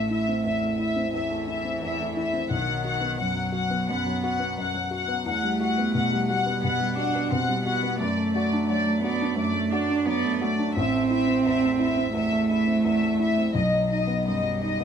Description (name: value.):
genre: neoclassical piano and strings.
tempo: 87 BPM.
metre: 4/4.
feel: rubato.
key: unclear.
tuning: A4 = 440 Hz.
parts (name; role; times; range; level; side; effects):
rich symphonic violin section; melody; 0.0-14.8 s; D5 to F#5; -28 LUFS; left 2 dB; none.
warm cello; second line; 0.0-14.8 s; D#3 to D4; -26 LUFS; right 4 dB; none.
warm grand piano; accompaniment; 0.0-14.8 s; A1 to F#4; -28 LUFS; left 3 dB; none.
room: moderate studio ambience, RT60 0.5 s.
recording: band playing live in one room.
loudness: -22 LUFS.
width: side -8 dB against mid.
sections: 0.0-14.8 A section.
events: none.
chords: 0.0 Am; 2.5 B; 5.3 Emadd9; 8.0 D/F#; 10.8 Am; 13.5 B.